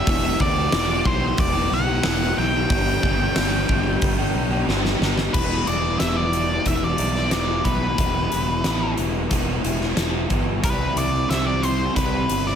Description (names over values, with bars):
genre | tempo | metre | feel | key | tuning
rock, shoegaze and dream pop | 91 BPM | 4/4 | straight | unclear | A4 = 440 Hz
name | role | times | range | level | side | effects
octave-fuzz lead guitar | melody | 0.0-12.6 s | B4 to G5 | -25 LUFS | equal | distortion, slapback echo
crunchy overdriven guitar | riff | 0.0-12.6 s | C3 to G4 | -24 LUFS | left 1 dB | wide subtle chorus
fuzz fingered electric bass | bass | 0.1-12.6 s | E1 to D2 | -25 LUFS | equal | overdrive
huge arena drum kit | drums | 0.1-12.5 s | crash cymbal, hi-hat, kick drum, snare drum | -24 LUFS | equal | none
room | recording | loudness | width
light reverb, studio ambience | none | -19 LUFS | side -8 dB against mid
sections
0.0-5.3 A section; 5.3-12.6 B section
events
drum fill 4.7-5.3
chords
0.0 Em7; 2.7 G; 5.3 Em; 10.6 C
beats
| 0.08 0.73 1.39 2.05 | 2.71 3.36 4.02 4.68 | 5.34 6.00 6.66 7.33 | 7.99 8.65 9.31 9.97 | 10.64 11.30 11.96